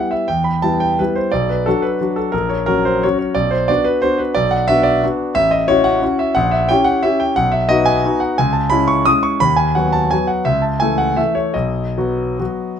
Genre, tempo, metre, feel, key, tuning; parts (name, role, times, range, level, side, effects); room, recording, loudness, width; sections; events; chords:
classical, piano waltz; 143-192 BPM; 3/4; rubato; A4 = 440 Hz
clear grand piano; solo; 0.0-12.8 s; A1 to D#6; -14 LUFS; equal
little or no reverb; close, detailed microphones; -14 LUFS; side -8 dB against mid
0.0-12.8 A section
0.0 Em; 1.3 Bm; 2.3 F#/A#; 3.4 Bm; 5.4 F#m7/A; 6.4 A#dim7; 7.4 B; 8.4 C#m; 9.4 B/D#; 10.5 A/C#; 11.6 B